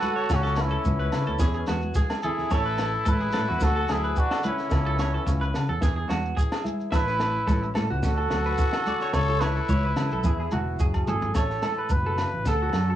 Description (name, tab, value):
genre	highlife guitar band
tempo	109 BPM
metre	4/4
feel	swing 53% on 16ths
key	A major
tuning	A4 = 440 Hz
part	trumpet with cup mute	melody	0.0-13.0 s	E4 to C#5	-28 LUFS	right 1 dB	cassette tape
part	growling trumpet	second line	0.0-10.5 s	C#4 to A4	-32 LUFS	left 3 dB	cassette tape
part	fingerpicked old ladder-braced acoustic guitar	accompaniment	0.0-13.0 s	A2 to G#4	-35 LUFS	left 4 dB	cassette tape
part	semi-hollow electric guitar	arpeggios	0.0-13.0 s	F#4 to E5	-32 LUFS	right 3 dB	cassette tape, tape echo
part	congas	percussion	0.0-12.8 s	none	-33 LUFS	right 1 dB	none
part	shekere	percussion	0.0-12.9 s	none	-37 LUFS	right 2 dB	none
part	fingered electric bass	bass	0.3-13.0 s	E1 to C#3	-27 LUFS	equal	none
part	compact cocktail drum kit	drums	0.3-12.9 s	kick drum, snare drum, toms	-27 LUFS	equal	cassette tape
part	agogo bells	percussion	0.3-12.9 s	none	-38 LUFS	right 2 dB	none
room	light reverb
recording	home recording on cassette, small room ambience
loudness	-22 LUFS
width	side -12 dB against mid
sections	0.0-11.3 A section; 11.3-13.0 B section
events	drum fill 1.8-2.5, 10.2-11.3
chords	0.3 Aadd9/C#; 1.4 Eadd9; 2.5 Aadd9; 3.6 D; 4.7 Aadd9/C#; 5.8 Eadd9; 6.9 Aadd9; 8.0 D; 9.1 Aadd9/C#; 10.2 Eadd9; 11.3 Aadd9; 12.5 D